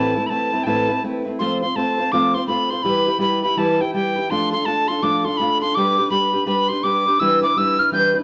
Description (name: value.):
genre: celtic folk.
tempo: 165 BPM.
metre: 4/4.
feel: swing 62% on 8ths.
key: unclear.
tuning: A4 = 439 Hz.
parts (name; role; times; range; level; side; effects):
tin whistle; melody; 0.0-8.1 s; G5 to G6; -22 LUFS; equal; none.
fingerpicked steel-string acoustic guitar; accompaniment; 0.0-8.2 s; A2 to C5; -23 LUFS; equal; none.
room: moderate large studio reverb, RT60 1.1 s.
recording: nothing above 7.8 kHz.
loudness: -19 LUFS.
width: mono.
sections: 0.0-1.4 A section; 1.4-8.2 A section.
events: none.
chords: 0.0 Amadd9; 1.4 F; 2.9 Em; 4.3 Dm/F; 5.8 G; 7.2 Em7.